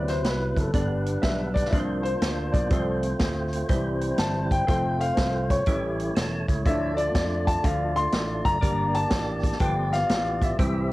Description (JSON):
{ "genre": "uptempo gospel", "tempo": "122 BPM", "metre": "4/4", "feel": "swing 66% on 8ths", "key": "unclear", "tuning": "A4 = 441 Hz", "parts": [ { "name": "warm upright piano", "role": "accompaniment", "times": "0.0-10.9 s", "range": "E3 to C6", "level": "-27 LUFS", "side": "left 2 dB", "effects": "cassette tape" }, { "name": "percussive tonewheel organ", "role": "sustained chords", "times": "0.0-10.9 s", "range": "C3 to A5", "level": "-30 LUFS", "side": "right 1 dB", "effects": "slow rotary speaker, overdrive, cassette tape" }, { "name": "vintage slap bass", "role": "bass", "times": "0.0-10.9 s", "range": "E1 to F2", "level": "-29 LUFS", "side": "equal", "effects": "none" }, { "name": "swinging big-band drum kit", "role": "drums", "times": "0.1-10.7 s", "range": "hi-hat, kick drum, snare drum", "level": "-27 LUFS", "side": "equal", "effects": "none" } ], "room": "light reverb", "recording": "home recording on cassette", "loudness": "-22 LUFS", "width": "side -18 dB against mid", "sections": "0.0-10.9 A section", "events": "upright piano solo 0.0-10.9", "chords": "0.0 D13; 0.7 G; 1.7 C9sus4; 2.7 F/C; 3.7 C; 4.7 F; 5.7 A7; 6.7 Dm; 8.6 Gm; 9.6 G7" }